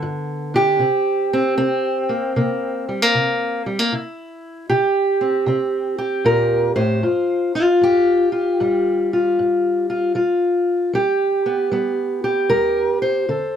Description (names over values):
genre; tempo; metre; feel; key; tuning
acoustic country blues, solo or duo; 77 BPM; 4/4; swing 66% on 8ths; unclear; A4 = 442 Hz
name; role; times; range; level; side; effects
fingerpicked steel-string acoustic guitar; solo; 0.0-13.6 s; G2 to C5; -17 LUFS; equal; none
room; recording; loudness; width
light reverb; close, detailed microphones; -17 LUFS; side -9 dB against mid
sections
0.0-13.6 A section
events
none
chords
0.0 G; 0.8 C7; 7.0 G7